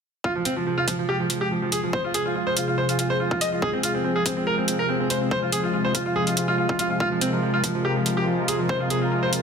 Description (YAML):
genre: heavy wobble dubstep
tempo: 142 BPM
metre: 4/4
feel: half-time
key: F minor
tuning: A4 = 440 Hz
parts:
  - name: clear concert grand piano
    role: melody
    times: 0.2-9.4 s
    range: F3 to Eb5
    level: -24 LUFS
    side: right 1 dB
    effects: ping-pong delay
  - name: supersaw pad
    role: sustained chords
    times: 0.2-9.4 s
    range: C3 to Bb4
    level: -25 LUFS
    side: left 1 dB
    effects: sidechain pumping, low-pass filter
  - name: electronic kick drum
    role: drums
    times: 0.2-8.8 s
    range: none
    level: -31 LUFS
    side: left 1 dB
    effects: high-pass filter on kick, studio reverb
  - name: electronic hi-hat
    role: drums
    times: 0.5-9.4 s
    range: none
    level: -26 LUFS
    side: right 1 dB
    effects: studio reverb
room: moderate lush hall reverb, RT60 2.2 s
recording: dense, heavily limited modern master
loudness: -21 LUFS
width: side -6 dB against mid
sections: 0.2-9.4 A section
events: filter sweep on supersaw synth 0.2-9.4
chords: 0.2 Fm